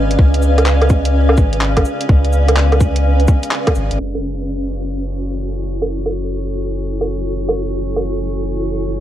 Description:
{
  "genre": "future garage",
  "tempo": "126 BPM",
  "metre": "4/4",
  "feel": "swing 65% on 16ths",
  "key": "F# minor",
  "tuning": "A4 = 438 Hz",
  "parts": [
    { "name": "granular cloud pad", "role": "sustained chords", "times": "0.0-9.0 s", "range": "C#4 to E#5", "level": "-21 LUFS", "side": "equal", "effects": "built-in reverb, sidechain pumping" },
    { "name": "soft dub sub bass", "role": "bass", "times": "0.0-9.0 s", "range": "F#1 to C#2", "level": "-17 LUFS", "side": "equal", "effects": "sidechain pumping" },
    { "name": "drifting glass-harmonics texture", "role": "texture", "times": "0.0-9.0 s", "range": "G#3 to C#6", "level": "-28 LUFS", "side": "right 2 dB", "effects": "chorus, built-in reverb" },
    { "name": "garage drum kit", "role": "drums", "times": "0.1-8.0 s", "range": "cabasa, handclaps, hi-hat, woodblock", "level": "-19 LUFS", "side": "right 1 dB", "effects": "overdrive, low-pass filter on hats, low-pass filter on perc, low-pass filter on snare" },
    { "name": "electronic kick drum", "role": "drums", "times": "0.2-3.7 s", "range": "none", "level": "-12 LUFS", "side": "equal", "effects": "overdrive" }
  ],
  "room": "light reverb",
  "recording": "cassette tape, low-pass filter",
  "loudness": "-14 LUFS",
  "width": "side -12 dB against mid",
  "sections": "0.0-4.0 A section; 4.0-9.0 B section",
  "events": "band accent 3.5; filter sweep on ambient pad 4.0-9.0; filter sweep 4.0-9.0",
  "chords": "0.0 C#7b9; 4.0 F#m7"
}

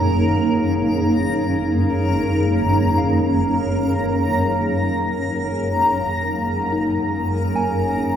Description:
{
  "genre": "ambient",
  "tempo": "72 BPM",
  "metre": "4/4",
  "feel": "straight",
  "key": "Gb major",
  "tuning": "A4 = 440 Hz",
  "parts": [
    { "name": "granular cloud pad", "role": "sustained chords", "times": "0.0-8.2 s", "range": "Gb2 to F5", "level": "-19 LUFS", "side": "equal", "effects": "built-in reverb, lush chorus" },
    { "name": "soft synth bell", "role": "arpeggios", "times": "0.0-8.2 s", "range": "Bb3 to Ab5", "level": "-30 LUFS", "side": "left 2 dB", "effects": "chorus, phaser, diffuse ambient delay" },
    { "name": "backwards swelling texture", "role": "texture", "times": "0.0-8.2 s", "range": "Bb4 to Bb5", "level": "-23 LUFS", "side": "equal", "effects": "built-in reverb, lush chorus" }
  ],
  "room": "wet cathedral reverb, RT60 7.5 s",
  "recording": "dreamy mix soaked in reverb",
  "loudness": "-17 LUFS",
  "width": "side -9 dB against mid",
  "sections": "0.0-8.2 A section",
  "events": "fade-in on synth bell 0.0-8.2",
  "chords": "0.0 Gbmaj9"
}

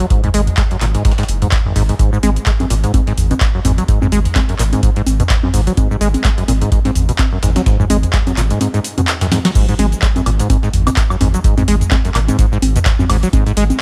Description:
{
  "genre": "acid house",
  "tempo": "127 BPM",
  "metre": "4/4",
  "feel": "swing 56% on 16ths",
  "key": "unclear",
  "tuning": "A4 = 440 Hz",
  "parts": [
    { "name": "acid bass, saw", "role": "riff", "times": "0.0-13.6 s", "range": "G#1 to G#3", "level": "-21 LUFS", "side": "equal", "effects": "tube saturation, analog chorus, tape echo" },
    { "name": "saturated sub bass", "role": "bass", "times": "0.0-13.7 s", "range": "F#1 to G#1", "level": "-18 LUFS", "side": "equal", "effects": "tube saturation, sidechain pumping" },
    { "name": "booming analog drum machine", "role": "drums", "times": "0.0-13.8 s", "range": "cabasa, congas, crash cymbal, handclaps, hi-hat, snare drum, toms, woodblock", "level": "-20 LUFS", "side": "equal", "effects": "none" },
    { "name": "breakbeat sampler-style drum kit", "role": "drums", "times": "0.1-13.7 s", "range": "hi-hat, snare drum", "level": "-33 LUFS", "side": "equal", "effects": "none" },
    { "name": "electronic kick drum", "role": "drums", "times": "0.1-13.4 s", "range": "none", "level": "-18 LUFS", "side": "equal", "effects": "none" }
  ],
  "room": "little or no reverb",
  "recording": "none",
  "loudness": "-14 LUFS",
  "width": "mono",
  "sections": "0.0-9.6 A section; 9.6-13.8 B section",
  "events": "filter sweep on acid bass 0.0-9.6; drum fill 9.3; band accent 9.4; drop 9.6-13.8",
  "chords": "none"
}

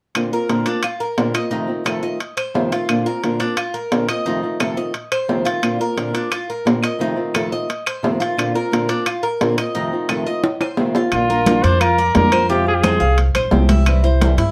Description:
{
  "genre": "latin, Cuban son and guajira",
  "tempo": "175 BPM",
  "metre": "4/4",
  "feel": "straight",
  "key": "Bb major",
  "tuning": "A4 = 443 Hz",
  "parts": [
    { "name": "nylon-string guitar", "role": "accompaniment", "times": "0.1-14.5 s", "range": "F2 to G4", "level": "-23 LUFS", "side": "equal", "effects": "none" },
    { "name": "claves", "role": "percussion", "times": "0.2-14.0 s", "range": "none", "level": "-30 LUFS", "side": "equal", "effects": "none" },
    { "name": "timbales", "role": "percussion", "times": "0.2-14.5 s", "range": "none", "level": "-24 LUFS", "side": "equal", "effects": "none" },
    { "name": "Cuban tres", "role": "arpeggios", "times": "0.3-14.5 s", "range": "D4 to F5", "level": "-26 LUFS", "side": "equal", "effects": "none" },
    { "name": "warm trumpet", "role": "melody", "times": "11.1-13.2 s", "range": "F4 to C5", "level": "-19 LUFS", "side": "equal", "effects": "slapback echo" },
    { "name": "upright bass", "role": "bass", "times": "11.1-14.5 s", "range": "Bb1 to G2", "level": "-20 LUFS", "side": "equal", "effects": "none" },
    { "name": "congas", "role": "percussion", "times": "11.1-14.5 s", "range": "none", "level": "-24 LUFS", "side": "equal", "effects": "none" }
  ],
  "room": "moderate studio reverb, RT60 0.6 s",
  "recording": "dark, warm production",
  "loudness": "-19 LUFS",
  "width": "mono",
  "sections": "0.2-11.1 A section; 11.1-14.5 B section",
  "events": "drum fill 10.4-11.1",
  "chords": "0.2 Bbadd9; 1.5 F7; 2.9 Bbadd9; 4.3 F7; 5.6 Bbadd9; 7.0 F7; 8.4 Bbadd9; 9.8 F7; 11.1 Bb; 12.5 Fmadd9; 13.9 C"
}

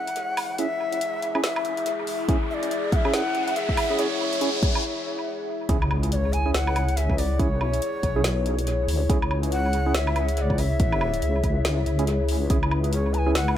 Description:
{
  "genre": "deep dubstep",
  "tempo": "141 BPM",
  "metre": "4/4",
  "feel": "swing 60% on 16ths, half-time",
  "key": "C# phrygian",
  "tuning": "A4 = 441 Hz",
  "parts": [
    { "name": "breathy bright long shakuhachi", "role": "melody", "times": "0.0-13.6 s", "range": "C#5 to A#5", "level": "-29 LUFS", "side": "left 1 dB", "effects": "dub echo" },
    { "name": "dark analog pad", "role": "sustained chords", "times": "0.0-13.6 s", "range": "E4 to E5", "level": "-30 LUFS", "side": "left 4 dB", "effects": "chorus" },
    { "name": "riser and impact", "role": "sound effects", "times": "0.1-7.4 s", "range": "none", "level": "-33 LUFS", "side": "equal", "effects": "none" },
    { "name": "deep house drum kit", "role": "drums", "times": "0.1-13.5 s", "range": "hi-hat, snare drum, woodblock", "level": "-30 LUFS", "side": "equal", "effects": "high-pass filter on snare, small room ambience, high-pass filter on hats, high-pass filter on perc, dub echo" },
    { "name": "percussive organ stab", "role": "stabs", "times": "0.6-13.4 s", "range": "C#4 to G#4", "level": "-31 LUFS", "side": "right 4 dB", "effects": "chorus, dub echo" },
    { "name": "electronic kick drum", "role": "drums", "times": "2.3-12.6 s", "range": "none", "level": "-24 LUFS", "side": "equal", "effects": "small room ambience" },
    { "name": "deep soft wobble bass", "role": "bass", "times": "5.7-13.6 s", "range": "B1 to D2", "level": "-24 LUFS", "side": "equal", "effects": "chorus" }
  ],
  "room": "light reverb",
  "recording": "echo-heavy mix",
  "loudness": "-22 LUFS",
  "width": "side -11 dB against mid",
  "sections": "0.0-5.7 A section; 5.7-13.6 B section",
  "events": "build-up 0.0-5.7; filter sweep on synth stab 0.0-5.7; riser 0.1-4.8; break 4.8-5.7; drop 5.7-13.6; impact 5.7-7.4",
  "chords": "0.0 C#m"
}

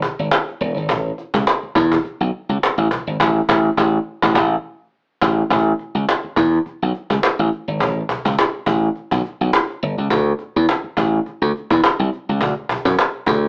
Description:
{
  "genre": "funk",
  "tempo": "104 BPM",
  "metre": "4/4",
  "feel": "swing 56% on 16ths",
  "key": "unclear",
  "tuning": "A4 = 437 Hz",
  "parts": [
    { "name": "cajon", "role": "drums", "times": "0.0-13.5 s", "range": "none", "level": "-21 LUFS", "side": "equal", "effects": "none" },
    { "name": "slap bass", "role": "bass", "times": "0.2-13.5 s", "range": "E1 to F#2", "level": "-20 LUFS", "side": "equal", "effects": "none" }
  ],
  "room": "moderate studio reverb, RT60 0.6 s",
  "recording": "band playing live in one room, AM radio sound",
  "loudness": "-19 LUFS",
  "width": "mono",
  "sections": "0.0-5.5 A section; 5.5-13.5 B section",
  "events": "band accent 3.2-5.5",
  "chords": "none"
}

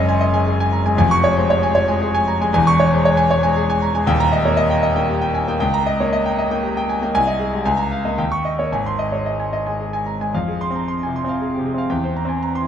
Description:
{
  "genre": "classical, virtuoso piano study",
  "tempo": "116 BPM",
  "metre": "3/4",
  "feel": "rubato",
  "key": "Ab major",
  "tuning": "A4 = 438 Hz",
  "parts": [
    { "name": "bright grand piano", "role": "solo", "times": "0.0-12.7 s", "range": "Eb1 to Db6", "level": "-16 LUFS", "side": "equal", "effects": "none" }
  ],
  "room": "wet recital hall reverb, RT60 1.6 s",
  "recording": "minimal, uncompressed stereo recording",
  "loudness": "-16 LUFS",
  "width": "side -9 dB against mid",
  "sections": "0.0-10.4 A section; 10.4-12.7 B section",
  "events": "none",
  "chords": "0.0 Ab7/Gb; 1.0 Db/F; 2.5 Dbm/Fb; 4.1 Eb; 5.6 Eb7/Db; 7.1 Ab/C; 7.7 Bbm7/Db; 8.2 Eb7; 8.7 Ab; 10.4 Fm; 11.9 C7/E"
}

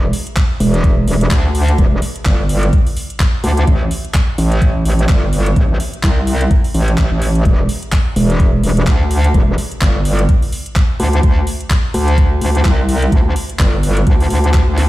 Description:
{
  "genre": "bass house",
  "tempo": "127 BPM",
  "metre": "4/4",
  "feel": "swing 57% on 16ths",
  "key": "E minor",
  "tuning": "A4 = 440 Hz",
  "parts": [
    { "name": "metallic wobble bass", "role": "bass", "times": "0.0-14.9 s", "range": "E1 to D2", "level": "-13 LUFS", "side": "equal", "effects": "chorus, tube saturation, sidechain pumping" },
    { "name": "garage drum kit", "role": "drums", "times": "0.1-14.9 s", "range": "handclaps, hi-hat, snare drum", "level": "-24 LUFS", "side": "equal", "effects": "none" },
    { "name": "electronic kick drum", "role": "drums", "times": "0.4-14.6 s", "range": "none", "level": "-13 LUFS", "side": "equal", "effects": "none" }
  ],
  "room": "little or no reverb",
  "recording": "played on a big sound system in a bare room, large studio reverb",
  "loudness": "-12 LUFS",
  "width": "side -16 dB against mid",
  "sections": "0.0-14.9 A section",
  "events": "none",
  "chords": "none"
}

